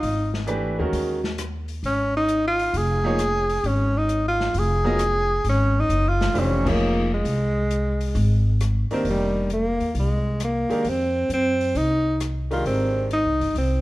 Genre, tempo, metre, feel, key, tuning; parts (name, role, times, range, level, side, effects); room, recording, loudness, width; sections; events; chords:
modal jazz; 133 BPM; 4/4; swing 68% on 8ths; F dorian from 9.1 s; A4 = 441 Hz
mellow tenor saxophone; melody; 0.0-13.8 s; G3 to G#4; -22 LUFS; equal
upright bass; bass; 0.0-13.8 s; E#1 to Gb2; -24 LUFS; equal
open jazz drum kit; drums; 0.0-13.7 s; crash cymbal, hi-hat, kick drum, rim click, snare drum; -34 LUFS; left 3 dB
bright upright piano; accompaniment; 0.5-13.1 s; D#3 to D#5; -26 LUFS; right 1 dB
moderate large studio reverb, RT60 1.3 s; dark, warm production; -20 LUFS; side -18 dB against mid
0.0-9.1 A section; 9.1-13.8 B section
band accent 6.6
0.0 G#m7; 1.8 A#m7; 7.2 C7(no3); 9.1 Fm9